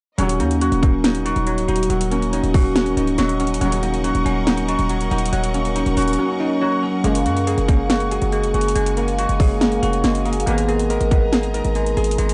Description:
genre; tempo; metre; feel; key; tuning
hip hop, trap; 140 BPM; 4/4; half-time; Eb minor; A4 = 445 Hz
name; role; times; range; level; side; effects
bell-like tine electric piano; accompaniment; 0.2-12.3 s; Gb3 to Ab4; -25 LUFS; equal; phaser
clear symphonic string section; sustained chords; 0.2-12.3 s; Bb4 to Db6; -34 LUFS; equal; none
concert harp; arpeggios; 0.2-12.3 s; Bb3 to Bb4; -25 LUFS; equal; delay
bright brass ensemble; stabs; 0.2-0.6, 3.6-4.0, 7.0-7.4, 10.5-10.9 s; Db2 to Bb3; -27 LUFS; equal; none
hard-hitting 808-style bass; bass; 0.2-12.3 s; Db1 to Gb2; -25 LUFS; equal; none
trap drum kit; drums; 0.2-12.3 s; hi-hat, kick drum, snare drum; -24 LUFS; equal; none
room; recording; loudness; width
studio ambience; dark, warm production, nothing above 10.6 kHz; -19 LUFS; mono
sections
0.2-12.3 A section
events
drums muted 6.2-7.0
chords
0.2 Ebm7; 7.0 Gbadd9; 10.5 Abmadd9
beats
| 0.18 0.61 1.04 1.47 | 1.90 2.33 2.75 3.18 | 3.61 4.04 4.47 4.90 | 5.33 5.75 6.18 6.61 | 7.04 7.47 7.90 8.33 | 8.76 9.18 9.61 10.04 | 10.47 10.90 11.33 11.76 | 12.18

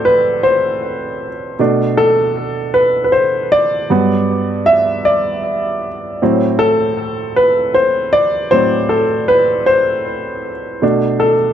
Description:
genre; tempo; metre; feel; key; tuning
R&B; 52 BPM (dotted quarters); 6/8; straight; A dorian; A4 = 444 Hz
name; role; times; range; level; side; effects
clear concert grand piano; solo; 0.0-11.5 s; G2 to E5; -12 LUFS; equal; tape echo
room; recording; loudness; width
light reverb; none; -12 LUFS; side -9 dB against mid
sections
0.0-11.5 A section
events
grand piano solo 0.0-11.5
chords
0.0 Am6; 1.6 Bm7; 3.9 Gmaj7; 6.2 Am6; 10.8 Bm7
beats
0.44 | 1.59 2.75 | 3.90 5.06 | 6.21 7.36 | 8.52 9.67 | 10.82

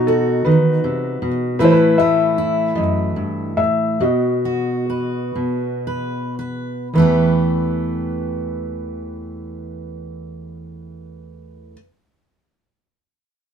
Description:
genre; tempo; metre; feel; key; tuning
folk; 35-52 BPM (dotted quarters); 6/8; straight; E harmonic minor; A4 = 441 Hz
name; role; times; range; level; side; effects
felt-muted upright piano; melody; 0.0-11.7 s; D#4 to E5; -18 LUFS; left 2 dB; none
fingerpicked steel-string acoustic guitar; accompaniment; 0.0-11.8 s; E2 to B4; -20 LUFS; right 1 dB; none
room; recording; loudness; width
light reverb; minimal, uncompressed stereo recording; -16 LUFS; side -8 dB against mid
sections
0.0-6.9 A section; 6.9-10.4 B section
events
slowing down 1.6-6.9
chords
0.0 B; 1.6 A5; 4.0 B; 6.9 Em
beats
0.44 | 1.58 2.75 | 3.99 5.36 | 6.94 8.65

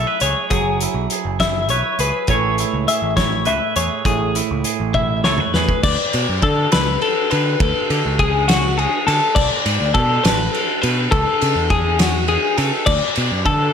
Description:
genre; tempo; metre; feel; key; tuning
math rock and midwest emo; 68 BPM (dotted quarters); 6/8; straight; unclear; A4 = 440 Hz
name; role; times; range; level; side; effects
twangy electric guitar; accompaniment; 0.0-5.8 s; A2 to C#5; -23 LUFS; right 12 dB; slapback echo
twelve-string electric guitar; arpeggios; 0.0-13.7 s; F#4 to E5; -19 LUFS; left 4 dB; spring reverb, tape echo, slapback echo
growling picked electric bass; bass; 0.0-13.7 s; F#1 to D3; -22 LUFS; right 1 dB; overdrive
loose indie drum kit; drums; 0.2-13.6 s; crash cymbal, hi-hat, kick drum, ride cymbal, snare drum, toms; -20 LUFS; equal; none
room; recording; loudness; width
moderate lush hall reverb, RT60 1.7 s; big arena sound; -15 LUFS; side -7 dB against mid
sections
0.0-5.8 A section; 5.8-13.7 B section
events
drum fill 4.9-5.8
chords
0.0 F#m9; 2.3 Amaj9; 5.8 D5; 9.4 Bm7; 11.1 F#m7/C#; 12.9 D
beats
| 0.51 1.40 | 2.29 3.17 | 4.06 4.95 | 5.83 6.72 | 7.60 8.48 | 9.36 10.24 | 11.12 12.00 | 12.88

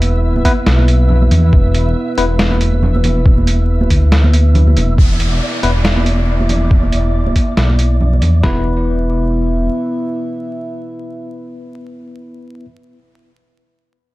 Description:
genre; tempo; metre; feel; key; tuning
deep dubstep; 139 BPM; 4/4; swing 58% on 16ths, half-time; unclear; A4 = 440 Hz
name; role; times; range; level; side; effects
dark analog pad; sustained chords; 0.0-12.6 s; B3 to E5; -22 LUFS; right 1 dB; chorus
dark detuned saw bass; bass; 0.0-9.7 s; E1 to E2; -13 LUFS; equal; none
trip hop sampler-style drum kit; drums; 0.0-8.3 s; hi-hat, snare drum; -19 LUFS; equal; none
flickering grainy texture; texture; 0.0-8.4 s; D5 to E5; -28 LUFS; equal; built-in reverb
congas; percussion; 0.4-8.3 s; none; -21 LUFS; right 1 dB; dub echo
bell-like tine electric piano; stabs; 0.5-2.2, 5.6-5.7, 8.4-12.6 s; B3 to B4; -22 LUFS; left 3 dB; medium stereo tremolo, dub echo
trip hop sampler-style drum kit; drums; 0.5-8.6 s; kick drum, snare drum; -13 LUFS; equal; none
downlifter; sound effects; 5.0-8.4 s; none; -26 LUFS; equal; none
room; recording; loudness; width
little or no reverb; dark, warm production, vinyl crackle; -11 LUFS; side -18 dB against mid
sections
0.0-5.0 A section; 5.0-8.4 B section; 8.4-11.9 C section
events
drop 0.0-5.0; kick drops out 4.6-5.0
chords
0.0 E5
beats
0.23 0.67 1.10 | 1.53 1.96 2.39 2.83 | 3.26 3.69 4.12 4.55 | 4.98 5.41 5.85 6.28 | 6.71 7.14 7.57 8.00 | 8.44 8.87 9.30 9.73 | 10.16 10.59 11.03 11.46

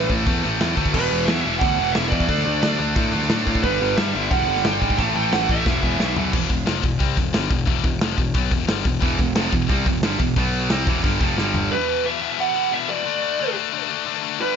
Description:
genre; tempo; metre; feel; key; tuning
heavy metal; 179 BPM; 4/4; straight; E minor; A4 = 445 Hz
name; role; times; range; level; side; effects
high-gain lead guitar; melody; 0.0-6.1, 11.7-14.6 s; B4 to A5; -24 LUFS; right 3 dB; distortion, ping-pong delay
heavy high-gain guitar; riff; 0.0-14.6 s; E2 to D4; -24 LUFS; left 16 dB; distortion
high-gain distorted guitar; riff; 0.0-6.3, 9.0-11.7 s; E2 to D4; -25 LUFS; right 14 dB; distortion
fuzz picked electric bass; bass; 0.0-11.7 s; E1 to A2; -25 LUFS; equal; overdrive
modern studio drum kit; drums; 0.1-11.6 s; crash cymbal, hi-hat, kick drum, snare drum, toms; -23 LUFS; equal; none
room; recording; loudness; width
light reverb; nothing above 7.6 kHz; -18 LUFS; side -7 dB against mid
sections
0.0-6.3 A section; 6.3-11.7 B section; 11.7-14.6 A section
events
drum fill 5.7-6.3, 11.4-11.7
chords
0.0 A5; 0.9 E5; 2.3 D5; 3.6 G; 5.0 A5; 5.7 E5; 6.3 Em; 10.4 B5; 10.7 Em; 11.4 G5; 11.7 E5; 13.1 D5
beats
0.26 0.60 | 0.94 1.28 1.62 1.96 | 2.29 2.63 2.97 3.31 | 3.64 3.98 4.32 4.65 | 4.99 5.33 5.66 6.00 | 6.33 6.67 7.00 7.34 | 7.68 8.01 8.35 8.68 | 9.02 9.36 9.69 10.03 | 10.36 10.70 11.04 11.37 | 11.71 12.04 12.38 12.72 | 13.05 13.39 13.72 14.06 | 14.40

